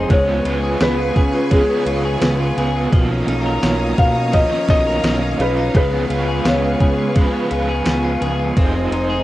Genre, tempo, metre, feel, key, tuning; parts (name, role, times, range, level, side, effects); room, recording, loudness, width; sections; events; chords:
dream pop; 85 BPM; 4/4; straight; A4 = 440 Hz
felt-muted upright piano; melody; 0.0-7.5 s; G#4 to E#5; -21 LUFS; left 1 dB; cassette tape, analog delay
crunchy overdriven guitar; accompaniment; 0.0-9.2 s; B2 to C5; -24 LUFS; right 4 dB; tremolo, wide subtle chorus, cassette tape
string machine, violas; sustained chords; 0.0-9.2 s; B4 to D#6; -26 LUFS; equal; ensemble chorus, cassette tape
electric guitar at the edge of break-up; arpeggios; 0.0-9.2 s; E#3 to A#4; -23 LUFS; left 2 dB; wide subtle chorus, cassette tape, analog delay
fat analog bass; bass; 0.0-9.2 s; F1 to C#3; -21 LUFS; equal
celesta; texture; 0.0-6.1 s; C#5 to E#5; -32 LUFS; right 2 dB; cassette tape, analog delay
detuned 8-bit digital drum machine; drums; 0.1-9.1 s; kick drum, ride cymbal, snare drum, tambourine; -18 LUFS; equal; overdrive, vintage 12-bit sampler grit, cassette tape
light reverb; home recording on cassette; -15 LUFS; side -15 dB against mid
0.0-9.2 A section
0.1 C#7; 2.9 Bmaj9#11; 5.7 C#7; 8.6 Fm7